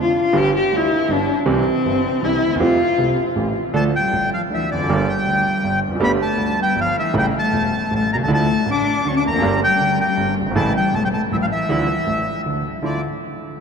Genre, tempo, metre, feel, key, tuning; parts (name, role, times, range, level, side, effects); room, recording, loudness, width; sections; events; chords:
tango; 159 BPM; 3/4; rubato; F major, D harmonic minor from 3.7 s; A4 = 436 Hz
dark cello; second line; 0.0-13.0 s; D3 to G4; -20 LUFS; left 3 dB
warm concert grand piano; accompaniment; 0.0-13.0 s; E1 to A4; -21 LUFS; right 3 dB
bandoneon; melody; 3.8-13.0 s; D5 to D6; -21 LUFS; equal
wet cathedral reverb, RT60 5.8 s; in a vast, echoing space; -16 LUFS; side -6 dB against mid
0.0-3.7 A section; 3.7-12.8 B section
cello solo 0.0-3.7
0.3 G; 1.5 C; 2.6 Fadd9; 3.4 A7; 3.7 Dm; 4.9 Gm; 6.0 Gadd9; 7.1 A; 8.3 Dmadd9; 9.4 Gm; 10.5 A; 11.7 Dmadd9